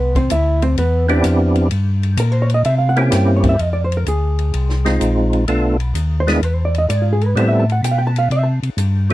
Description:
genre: soul jazz organ trio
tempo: 128 BPM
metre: 4/4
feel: swing 68% on 8ths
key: C major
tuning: A4 = 439 Hz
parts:
  - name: hollow-body jazz guitar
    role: accompaniment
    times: 0.0-8.5 s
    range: B3 to A5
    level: -20 LUFS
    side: right 2 dB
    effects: none
  - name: tonewheel organ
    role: bass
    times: 0.0-9.1 s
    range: Bb1 to C3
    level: -16 LUFS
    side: left 1 dB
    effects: overdrive, chorus vibrato, slow rotary speaker
  - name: open jazz drum kit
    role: drums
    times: 0.2-9.1 s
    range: hi-hat, kick drum, ride cymbal, snare drum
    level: -28 LUFS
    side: left 1 dB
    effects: none
  - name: percussive tonewheel organ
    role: melody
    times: 1.1-9.1 s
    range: F#3 to A4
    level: -16 LUFS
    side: right 1 dB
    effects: slow rotary speaker, chorus vibrato
room: little or no reverb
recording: dry, close 1970s-style studio recording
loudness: -14 LUFS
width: side -16 dB against mid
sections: 0.0-3.6 A section; 3.6-9.1 A section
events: hollow-body jazz guitar solo 0.0-9.1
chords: 0.0 Cmaj9; 1.7 Gdim; 2.7 C7b9; 3.6 Fm7; 5.5 Bm7b5; 6.4 E; 7.4 Am7

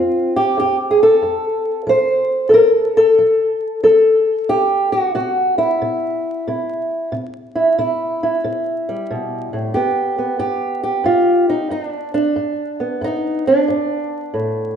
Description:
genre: acoustic country blues, solo or duo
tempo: 92 BPM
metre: 4/4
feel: swing 66% on 8ths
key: C major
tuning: A4 = 441 Hz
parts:
  - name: fingerpicked old ladder-braced acoustic guitar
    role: solo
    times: 0.0-14.8 s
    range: F2 to C5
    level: -15 LUFS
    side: equal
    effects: none
room: wet stone room reverb, RT60 1.2 s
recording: band playing live in one room, vinyl crackle, nothing above 10.6 kHz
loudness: -15 LUFS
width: side -8 dB against mid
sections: 0.0-14.8 A section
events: none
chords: 0.0 F; 4.5 C; 9.7 G

